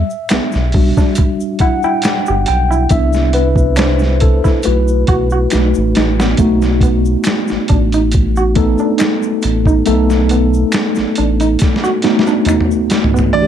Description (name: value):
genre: R&B, neo-soul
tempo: 69 BPM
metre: 4/4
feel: swing 54% on 16ths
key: unclear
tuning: A4 = 440 Hz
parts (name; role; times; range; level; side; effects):
- electric guitar through a small old amp; second line; 0.0-13.3 s; A3 to G4; -19 LUFS; right 4 dB; none
- mellow tine electric piano; accompaniment; 0.0-13.5 s; E3 to G5; -16 LUFS; left 1 dB; medium stereo tremolo
- round analog bass; bass; 0.0-11.6 s; G1 to C2; -15 LUFS; equal; none
- tube shaker and finger snaps; percussion; 0.1-13.3 s; none; -28 LUFS; left 3 dB; none
- boom bap sampler-style drum kit; drums; 0.3-13.4 s; hi-hat, kick drum, snare drum, toms; -16 LUFS; equal; none
- clear concert grand piano; melody; 13.3-13.5 s; D5; -12 LUFS; right 4 dB; none
room: light reverb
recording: none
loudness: -11 LUFS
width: side -9 dB against mid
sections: 0.0-6.4 A section; 6.4-13.3 B section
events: tine electric piano solo 0.0-6.4; drum fill 5.5-6.4, 11.6-13.3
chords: 0.0 Em9; 2.9 Cmaj9; 4.6 B7sus4; 5.5 B7